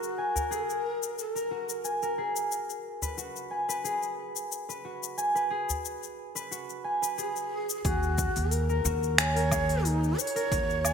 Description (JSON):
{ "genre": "organic downtempo", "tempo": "90 BPM", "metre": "4/4", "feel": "swing 54% on 16ths", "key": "G# minor", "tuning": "A4 = 440 Hz", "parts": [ { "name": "breathy low Native American-style wooden flute", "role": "melody", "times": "0.0-2.1, 7.2-10.9 s", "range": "D#4 to C#5", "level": "-32 LUFS", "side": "equal", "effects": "ping-pong delay" }, { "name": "concert harp", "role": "arpeggios", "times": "0.0-10.9 s", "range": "F#4 to G#5", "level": "-32 LUFS", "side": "equal", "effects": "low-pass filter, ping-pong delay" }, { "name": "afro-pop drum kit", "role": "drums", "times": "0.0-10.9 s", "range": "finger snaps, hi-hat, shaker, woodblock", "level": "-29 LUFS", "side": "left 3 dB", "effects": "gated reverb" }, { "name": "udu", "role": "percussion", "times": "0.4-8.5 s", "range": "none", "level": "-37 LUFS", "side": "equal", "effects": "none" }, { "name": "upright bass", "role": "bass", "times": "7.8-10.9 s", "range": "D#2", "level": "-28 LUFS", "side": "equal", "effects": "tube saturation, sidechain pumping" }, { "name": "electronic kick drum", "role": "drums", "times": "7.8-10.7 s", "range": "none", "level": "-32 LUFS", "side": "equal", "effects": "overdrive" } ], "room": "moderate lush hall reverb, RT60 2.4 s", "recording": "bright 1980s-style digital production", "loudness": "-27 LUFS", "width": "side -7 dB against mid", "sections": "0.0-7.8 A section; 7.8-10.9 B section", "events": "none", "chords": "0.0 F#add9; 2.5 G#m7; 7.8 D#m7" }